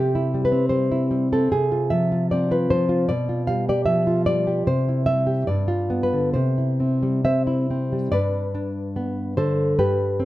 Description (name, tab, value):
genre	romantic piece for solo classical guitar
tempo	67-78 BPM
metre	2/4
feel	rubato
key	C major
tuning	A4 = 441 Hz
part	nylon-string guitar	solo	0.0-10.2 s	G2 to F5	-19 LUFS	equal	none
room	light reverb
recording	close, detailed microphones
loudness	-19 LUFS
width	side -15 dB against mid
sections	0.0-8.1 A section; 8.1-10.2 B section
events	none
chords	0.0 C; 1.5 F5/C; 3.1 G7/B; 4.7 C; 5.5 G7; 6.4 C; 8.1 G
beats	0.73 | 1.52 2.32 | 3.10 3.89 | 4.68 5.50 | 6.36 7.25 | 8.13 8.96 | 9.78